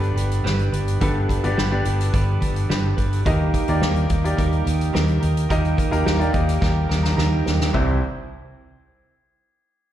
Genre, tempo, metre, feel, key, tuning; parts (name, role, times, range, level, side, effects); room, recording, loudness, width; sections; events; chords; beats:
piano-driven pop; 107 BPM; 4/4; straight; A4 = 440 Hz
clear baby grand piano; accompaniment; 0.0-8.0 s; C2 to Bb5; -26 LUFS; left 2 dB; slapback echo
bright tonewheel organ; sustained chords; 0.0-8.0 s; C3 to Bb4; -32 LUFS; right 1 dB; overdrive, slow rotary speaker
direct-recorded clean electric guitar; riff; 0.0-8.0 s; C3 to C5; -28 LUFS; right 10 dB; spring reverb, slapback echo
vintage muted fingered electric bass; bass; 0.0-8.0 s; G1 to Eb2; -21 LUFS; equal
soft-mallet drum kit; drums; 0.0-7.9 s; crash cymbal, hi-hat, kick drum, snare drum; -24 LUFS; equal
little or no reverb; live gig heard through the venue's PA, recital hall reverb; -18 LUFS; side -12 dB against mid
0.0-7.7 A section; 7.7-9.9 B section
grand piano fill 6.1-7.7; drum fill 6.6-7.7
0.0 G; 3.3 Eb; 7.7 C
0.45 | 1.01 1.58 2.14 2.70 | 3.26 3.82 4.38 4.94 | 5.50 6.06 6.62 7.18 | 7.75